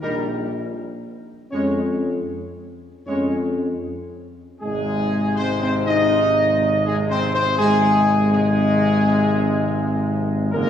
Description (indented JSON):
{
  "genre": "classical, ceremonial fanfare",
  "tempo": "80 BPM",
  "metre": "4/4",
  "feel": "uneven beats",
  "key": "Ab major from 4.6 s",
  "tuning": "A4 = 439 Hz",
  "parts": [
    { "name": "mellow trumpet section", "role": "melody", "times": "0.0-10.7 s", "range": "Ab4 to Eb5", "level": "-22 LUFS", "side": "equal", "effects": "none" },
    { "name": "bright trombone section", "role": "sustained chords", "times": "0.0-10.7 s", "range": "Bb2 to Ab3", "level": "-26 LUFS", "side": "right 1 dB", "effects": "none" },
    { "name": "mellow French horn section", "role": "sustained chords", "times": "0.0-10.7 s", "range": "Ab3 to Eb4", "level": "-24 LUFS", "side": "left 3 dB", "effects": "none" },
    { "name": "warm tuba", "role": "bass", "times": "0.0-10.7 s", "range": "Gb1 to F2", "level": "-23 LUFS", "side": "equal", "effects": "none" }
  ],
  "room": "wet concert hall reverb, RT60 2.2 s",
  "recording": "heard from further back in the room, small room ambience",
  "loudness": "-17 LUFS",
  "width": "side -9 dB against mid",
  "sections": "0.0-4.6 A section; 4.6-10.7 B section",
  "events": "none",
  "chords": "0.0 Eb; 1.5 Db/F; 4.6 Ab",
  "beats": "0.02 0.76 | 1.52 2.30 3.07 3.85 | 4.62 5.37 6.12 6.86 | 7.60 8.33 9.07 9.81 | 10.54"
}